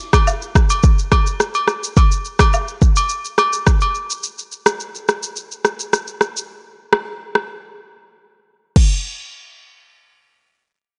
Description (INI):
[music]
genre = afrobeats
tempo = 106 BPM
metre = 4/4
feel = straight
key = none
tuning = none
[part]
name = afro-pop drum kit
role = drums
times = 0.1-8.9 s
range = crash cymbal, kick drum, rim click, shaker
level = -18 LUFS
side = equal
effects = none
[part]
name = agogo bells and woodblock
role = percussion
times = 0.1-3.9 s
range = none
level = -22 LUFS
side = equal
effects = none
[sound]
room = digital ambience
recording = nothing above 10.5 kHz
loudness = -18 LUFS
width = mono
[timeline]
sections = 0.0-8.8 A section; 8.8-11.0 B section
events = break 7.6-8.8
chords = none